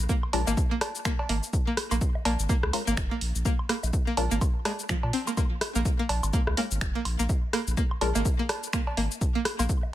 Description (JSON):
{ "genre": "minimal techno", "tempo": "125 BPM", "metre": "4/4", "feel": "swing 58% on 16ths", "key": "Bb minor", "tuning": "A4 = 439 Hz", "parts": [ { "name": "saturated sub bass", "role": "bass", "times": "0.0-9.7 s", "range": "F1 to Bb2", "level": "-28 LUFS", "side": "equal", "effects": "tube saturation, sidechain pumping" }, { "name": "string-like resonator pluck", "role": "riff", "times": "0.1-9.6 s", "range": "F3 to C4", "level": "-31 LUFS", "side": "right 1 dB", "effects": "chorus, sidechain pumping, tape echo" }, { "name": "electronic kick drum", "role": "drums", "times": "0.1-9.8 s", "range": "none", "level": "-27 LUFS", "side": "equal", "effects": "none" }, { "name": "punchy analog drum machine", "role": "drums", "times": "0.1-9.8 s", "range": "cabasa, finger snaps, hi-hat", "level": "-34 LUFS", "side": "equal", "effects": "none" }, { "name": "electronic woodblock, cowbell and rim click", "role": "percussion", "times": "0.2-9.9 s", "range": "none", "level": "-33 LUFS", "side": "equal", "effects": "tape echo" }, { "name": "filtered dub chord stab", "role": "stabs", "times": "0.3-8.1 s", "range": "Ab3 to Bb4", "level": "-34 LUFS", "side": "left 4 dB", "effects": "phaser, analog chorus, tape echo" } ], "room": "little or no reverb", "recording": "none", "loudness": "-24 LUFS", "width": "side -14 dB against mid", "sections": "0.0-9.9 A section", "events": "none", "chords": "0.0 Bb7(no3)" }